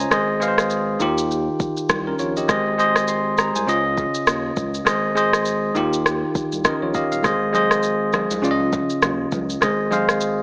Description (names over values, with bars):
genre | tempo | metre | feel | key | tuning
afrobeats | 101 BPM | 4/4 | swing 58% on 16ths | Ab major | A4 = 439 Hz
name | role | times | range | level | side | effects
bell-like tine electric piano | accompaniment | 0.0-10.4 s | Db3 to C6 | -22 LUFS | equal | none
saturated sub bass | bass | 0.0-10.4 s | Eb1 to Eb2 | -33 LUFS | equal | none
afro-pop drum kit | drums | 0.1-10.4 s | kick drum, rim click, shaker | -25 LUFS | equal | none
congas | percussion | 7.2-10.1 s | none | -34 LUFS | equal | none
room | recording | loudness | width
moderate plate reverb, RT60 2.0 s | AM radio sound | -20 LUFS | mono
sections
0.0-10.4 A section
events
tine electric piano fill 6.4-7.2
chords
0.1 Ab; 1.0 Ebadd9; 2.5 Ab; 3.7 Dbadd9; 4.9 Ab; 5.8 Ebadd9; 7.2 Ab; 8.4 Dbadd9; 9.6 Ab